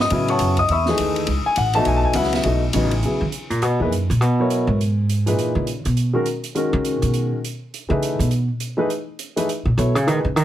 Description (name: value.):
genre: modal jazz.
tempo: 205 BPM.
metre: 4/4.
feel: swing 62% on 8ths.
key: G# minor from 3.0 s.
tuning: A4 = 438 Hz.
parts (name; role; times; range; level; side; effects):
warm grand piano; accompaniment; 0.0-10.2 s; A#2 to E6; -20 LUFS; left 2 dB; none.
upright bass; bass; 0.0-10.4 s; A1 to D#3; -20 LUFS; right 1 dB; none.
open jazz drum kit; drums; 0.0-10.4 s; hi-hat, kick drum, ride cymbal, snare drum; -30 LUFS; right 2 dB; none.
room: moderate small room reverb, RT60 0.5 s.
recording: heavily compressed radio sound.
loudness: -18 LUFS.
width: side -12 dB against mid.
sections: 0.0-3.0 A section; 3.0-10.4 A section.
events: upright bass solo 3.0-10.4.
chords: 0.0 B9sus4; 3.0 G#m11; 7.7 F#m11 (rootless).